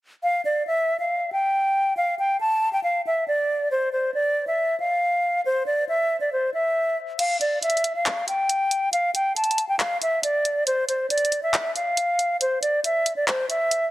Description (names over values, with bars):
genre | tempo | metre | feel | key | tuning
hip hop, trap | 138 BPM | 4/4 | half-time | F major | A4 = 440 Hz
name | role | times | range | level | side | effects
hollow concert flute | melody | 0.2-13.9 s | C5 to A5 | -21 LUFS | equal | none
trap drum kit | drums | 7.2-13.8 s | crash cymbal, handclaps, hi-hat | -25 LUFS | equal | vintage 12-bit sampler grit
room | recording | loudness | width
light reverb, digital ambience | heavily compressed radio sound, multiband compression | -21 LUFS | side -16 dB against mid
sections
0.2-7.2 A section; 7.2-13.9 B section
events
kick muted 7.2-13.9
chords
none